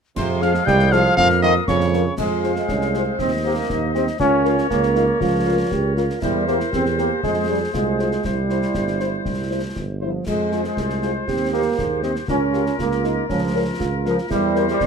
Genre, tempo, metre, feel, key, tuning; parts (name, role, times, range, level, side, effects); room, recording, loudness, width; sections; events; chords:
military-style march for wind band; 119 BPM; 2/4; straight; F minor; A4 = 445 Hz
warm cornet; melody; 0.2-14.7 s; C5 to G5; -25 LUFS; equal
clear euphonium; second line; 0.2-14.9 s; C3 to Ab4; -26 LUFS; right 6 dB
warm woodwind section; second line; 0.2-14.9 s; E4 to F5; -26 LUFS; left 6 dB
wooden piccolo; second line; 0.2-2.1 s; C6 to G6; -23 LUFS; left 7 dB
clear trombone section; sustained chords; 0.2-14.9 s; F3 to Db4; -23 LUFS; right 2 dB
mellow tuba; bass; 0.2-14.9 s; G1 to F2; -24 LUFS; right 3 dB
concert snare drum, clash cymbals and concert bass drum; drums; 0.2-14.9 s; -30 LUFS; left 2 dB
mellow French horn section; accompaniment; 0.4-14.6 s; F3 to C5; -24 LUFS; left 6 dB
little or no reverb; close, detailed microphones; -18 LUFS; side -6 dB against mid
0.2-2.2 A section; 2.2-14.9 B section
0.2 Fm; 1.2 Bbm/F; 2.2 Fm; 3.2 Cm/Eb; 4.2 Bbm/Db; 6.2 C7/E; 7.2 Fm; 8.2 C; 10.3 Fm; 11.3 Cm/Eb; 12.3 Bbm/Db; 14.3 C7/E